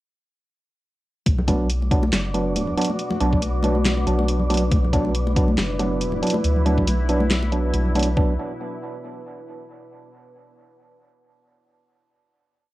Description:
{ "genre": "deep dubstep", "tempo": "139 BPM", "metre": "4/4", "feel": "swing 56% on 16ths, half-time", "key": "B minor", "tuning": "A4 = 439 Hz", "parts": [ { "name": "deep dark ambient pad", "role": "sustained chords", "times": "2.2-8.4 s", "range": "B3 to B4", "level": "-31 LUFS", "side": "left 1 dB", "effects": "chorus, built-in reverb, cassette tape" }, { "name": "soft dub sub bass", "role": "bass", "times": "1.3-8.4 s", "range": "F#1 to D2", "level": "-23 LUFS", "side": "equal", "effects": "none" }, { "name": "dubstep drum kit", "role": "drums", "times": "1.3-8.1 s", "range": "handclaps, hi-hat, snare drum", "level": "-25 LUFS", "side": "equal", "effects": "studio reverb, cassette tape" }, { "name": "electronic kick drum", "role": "drums", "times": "1.3-8.3 s", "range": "none", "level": "-21 LUFS", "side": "equal", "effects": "studio reverb, cassette tape" }, { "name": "congas", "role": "percussion", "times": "1.3-8.0 s", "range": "none", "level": "-28 LUFS", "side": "left 1 dB", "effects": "dub echo" }, { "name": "wind-like tuned noise texture", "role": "texture", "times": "1.8-8.2 s", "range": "D4 to D5", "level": "-34 LUFS", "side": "left 2 dB", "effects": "built-in reverb, cassette tape" }, { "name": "percussive organ stab", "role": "stabs", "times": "1.5-8.3 s", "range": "F#3 to D4", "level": "-24 LUFS", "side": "right 2 dB", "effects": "chorus, cassette tape, dub echo" } ], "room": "light reverb", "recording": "home recording on cassette", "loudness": "-18 LUFS", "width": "side -16 dB against mid", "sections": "1.3-8.2 drop; 8.2-9.9 final chord", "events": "drop 1.3-8.2", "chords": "1.3 Bm", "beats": "| 1.26 1.70 2.13 2.56 | 2.99 3.42 3.85 4.28 | 4.72 5.15 5.58 6.01 | 6.44 6.87 7.31 7.74 | 8.17" }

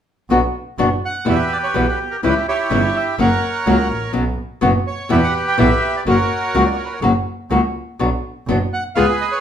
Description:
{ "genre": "tango", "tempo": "125 BPM", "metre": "4/4", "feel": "rubato", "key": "B harmonic minor", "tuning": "A4 = 441 Hz", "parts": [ { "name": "nylon-string guitar", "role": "accompaniment", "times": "0.3-9.1 s", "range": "B2 to G#4", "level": "-18 LUFS", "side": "left 4 dB", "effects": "none" }, { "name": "clear double bass", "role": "bass", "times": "0.3-9.2 s", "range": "F#1 to E2", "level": "-20 LUFS", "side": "right 2 dB", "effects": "none" }, { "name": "bandoneon", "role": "melody", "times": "1.1-9.4 s", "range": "E4 to G5", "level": "-19 LUFS", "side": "right 2 dB", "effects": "none" } ], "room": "moderate large studio reverb, RT60 0.8 s", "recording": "minimal, uncompressed stereo recording", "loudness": "-15 LUFS", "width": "side -9 dB against mid", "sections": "0.3-9.4 A section", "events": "none", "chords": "0.3 Bm; 1.3 Em; 2.2 C#dim; 3.2 F#; 4.2 Bsus2; 5.1 Em; 6.1 F#; 8.0 Bm", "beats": "| 0.31 0.79 1.27 1.76 | 2.24 2.72 3.20 3.68 | 4.16 4.63 5.11 5.59 | 6.07 6.55 7.03 7.51 | 8.00 8.48 8.96" }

